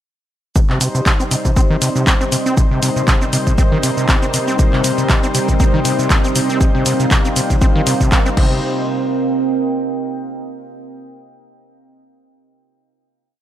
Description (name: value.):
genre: acid house.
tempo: 119 BPM.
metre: 4/4.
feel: swing 55% on 16ths.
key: C minor.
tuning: A4 = 442 Hz.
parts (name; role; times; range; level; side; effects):
lush unison pad; sustained chords; 0.6-8.6 s; C3 to C5; -22 LUFS; equal; chorus, vintage 12-bit sampler grit, sidechain pumping.
overdriven acid bass; riff; 0.6-8.6 s; C3 to C4; -20 LUFS; equal; distortion, analog delay.
electronic kick drum; drums; 0.6-8.5 s; none; -14 LUFS; equal; none.
punchy analog drum machine; drums; 0.6-8.5 s; cabasa, crash cymbal, handclaps, hi-hat; -20 LUFS; equal; none.
deep dark ambient pad; texture; 2.0-10.6 s; C4 to G5; -21 LUFS; right 2 dB; chorus, built-in reverb, sidechain pumping.
room: light reverb.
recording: echo-heavy mix.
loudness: -13 LUFS.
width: side -11 dB against mid.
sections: 0.6-8.6 groove; 8.6-10.6 final chord.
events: none.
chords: 0.6 Cm.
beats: | 0.56 1.06 1.57 2.07 | 2.57 3.08 3.58 4.09 | 4.59 5.09 5.60 6.10 | 6.61 7.11 7.62 8.12 | 8.62 9.13 9.63 10.14.